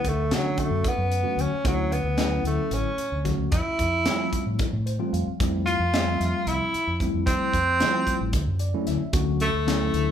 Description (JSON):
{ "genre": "electric jazz fusion", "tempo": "224 BPM (eighths)", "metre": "7/8", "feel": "straight", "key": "unclear", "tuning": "A4 = 439 Hz", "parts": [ { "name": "clear tenor saxophone", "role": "melody", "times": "0.0-10.1 s", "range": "F#3 to F4", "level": "-25 LUFS", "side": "equal", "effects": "none" }, { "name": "tine electric piano", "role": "accompaniment", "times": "0.0-10.1 s", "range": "D3 to F5", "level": "-29 LUFS", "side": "left 1 dB", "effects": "medium stereo tremolo" }, { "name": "deep dub fingered electric bass", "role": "bass", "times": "0.0-10.1 s", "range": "A1 to F3", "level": "-27 LUFS", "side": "equal", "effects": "none" }, { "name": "tight funk drum kit", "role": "drums", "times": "0.0-10.1 s", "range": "hi-hat, kick drum, snare drum", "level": "-28 LUFS", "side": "equal", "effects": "none" } ], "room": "moderate large studio reverb, RT60 1.1 s", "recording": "band playing live in one room", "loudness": "-22 LUFS", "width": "side -9 dB against mid", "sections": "0.0-10.1 A section", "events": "tine electric piano fill 4.6-5.4, 8.3-9.1", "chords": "0.0 Dmaj9; 3.5 Fmaj9; 8.3 Dmaj9" }